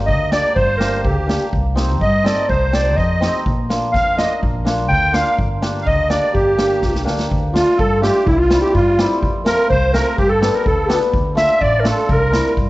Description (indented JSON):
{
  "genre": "klezmer",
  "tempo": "125 BPM",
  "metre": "2/4",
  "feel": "straight",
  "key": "G minor, D minor from 7.3 s",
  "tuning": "A4 = 440 Hz",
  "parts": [
    { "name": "upright bass", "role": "bass", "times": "0.0-12.7 s", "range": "G1 to G2", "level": "-20 LUFS", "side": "equal", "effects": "none" },
    { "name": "dark clarinet", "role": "melody", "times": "0.1-12.5 s", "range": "E4 to G5", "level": "-18 LUFS", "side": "equal", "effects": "none" },
    { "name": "musette accordion", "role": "second line", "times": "0.1-12.5 s", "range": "E4 to G5", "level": "-23 LUFS", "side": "right 2 dB", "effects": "none" },
    { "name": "street-band drum kit", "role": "drums", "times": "0.1-12.7 s", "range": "kick drum, snare drum", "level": "-21 LUFS", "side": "equal", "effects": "none" },
    { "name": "hammered dulcimer", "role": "accompaniment", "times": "0.3-12.7 s", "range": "G3 to A4", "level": "-22 LUFS", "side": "left 1 dB", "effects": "none" }
  ],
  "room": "moderate recital hall reverb, RT60 1.7 s",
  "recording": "worn, warbling old tape, cassette tape, warbly pitch drift, nothing above 7.9 kHz",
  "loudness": "-14 LUFS",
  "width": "side -18 dB against mid",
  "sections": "0.0-7.3 A section; 7.3-12.7 B section",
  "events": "drum fill 6.8-7.3",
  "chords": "0.0 Gm; 1.5 Cm; 3.5 Bb; 5.4 Gm; 7.3 Dm; 8.3 C; 9.2 F; 10.2 G; 11.1 Dm; 12.1 C"
}